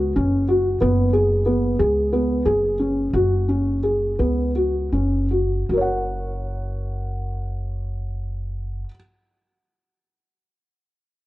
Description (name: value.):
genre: contemporary instrumental, chamber music in an uneven meter.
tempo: 155-185 BPM (eighths).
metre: 7/8.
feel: straight.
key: F# major.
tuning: A4 = 441 Hz.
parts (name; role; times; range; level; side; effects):
felt-muted upright piano; arpeggios; 0.0-8.9 s; B3 to F#5; -20 LUFS; equal; none.
upright bass; bass; 0.0-8.8 s; F#1 to C#2; -24 LUFS; equal; none.
room: wet spring reverb, RT60 2.5 s.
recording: worn, warbling old tape, cassette tape, warbly pitch drift.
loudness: -19 LUFS.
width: side -16 dB against mid.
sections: 0.0-5.7 A section; 5.7-8.3 B section.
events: slowing down 0.8-5.7.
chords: 0.0 F#sus24; 5.7 F#.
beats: 0.16 0.48 | 0.81 1.14 1.46 1.79 2.12 2.45 2.79 | 3.13 3.48 3.83 4.18 4.55 4.92 5.30 | 5.69 6.07 6.45 6.82 7.20 7.58 7.96.